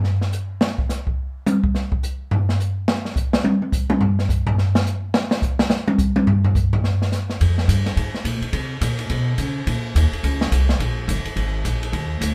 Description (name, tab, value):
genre	jazz, big band swing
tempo	212 BPM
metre	4/4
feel	swing 62% on 8ths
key	F minor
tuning	A4 = 440 Hz
part	open jazz drum kit	drums	0.0-12.3 s	hi-hat, kick drum, ride cymbal, snare drum, toms	-22 LUFS	equal	none
part	upright bass	bass	7.4-12.3 s	G1 to C#3	-22 LUFS	equal	none
room	wet club reverb, RT60 0.6 s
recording	heard from further back in the room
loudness	-21 LUFS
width	mono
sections	0.0-7.4 A section; 7.4-12.3 B section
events	drum solo 0.0-7.4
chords	none